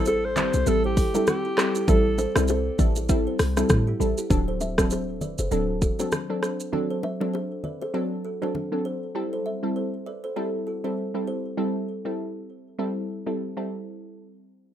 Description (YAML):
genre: afrobeats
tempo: 99 BPM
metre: 4/4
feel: swing 58% on 16ths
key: A dorian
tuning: A4 = 439 Hz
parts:
  - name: warm alto saxophone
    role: melody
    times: 0.0-2.5 s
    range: G4 to C5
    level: -27 LUFS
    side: equal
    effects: plate reverb, ping-pong delay
  - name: glassy wavetable pluck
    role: accompaniment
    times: 0.0-13.8 s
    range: F#3 to A4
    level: -27 LUFS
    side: equal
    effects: chorus
  - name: kalimba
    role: riff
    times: 0.0-11.4 s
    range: E4 to E5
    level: -32 LUFS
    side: right 2 dB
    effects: ping-pong delay
  - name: short 808-style bass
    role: bass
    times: 0.0-5.9 s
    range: D1 to A2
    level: -26 LUFS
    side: equal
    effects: none
  - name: afro-pop drum kit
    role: drums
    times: 0.1-6.7 s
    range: handclaps, hi-hat, kick drum, rim click, shaker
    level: -24 LUFS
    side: equal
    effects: none
  - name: bongos and congas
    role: percussion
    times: 0.1-8.7 s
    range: none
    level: -33 LUFS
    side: left 3 dB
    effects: none
room: moderate studio reverb, RT60 0.6 s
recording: rough home demo mix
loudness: -23 LUFS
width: side -10 dB against mid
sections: 0.0-4.3 A section; 4.3-14.0 B section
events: none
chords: 0.0 Am7; 4.3 D7; 9.2 Am7